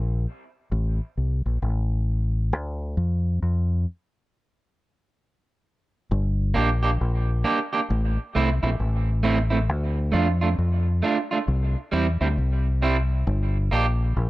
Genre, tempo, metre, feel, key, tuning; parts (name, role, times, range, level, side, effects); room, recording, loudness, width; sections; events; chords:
dub reggae; 67 BPM; 4/4; swing 63% on 16ths; G dorian; A4 = 439 Hz
deep dub fingered electric bass; bass; 0.0-14.3 s; G1 to F2; -22 LUFS; left 1 dB
electric guitar at the edge of break-up; accompaniment; 6.5-13.9 s; G3 to G4; -25 LUFS; right 4 dB; high-pass filter, dub echo
digital ambience; -21 LUFS; side -17 dB against mid
0.0-6.1 A section; 6.1-14.3 B section
break 0.0-6.1; filter sweep on clean electric guitar 9.7-14.3
0.0 N.C.; 0.7 Am; 2.5 Dm; 4.3 N.C.; 6.1 Gm; 7.9 Am; 9.7 Dm; 11.5 C; 13.3 Gm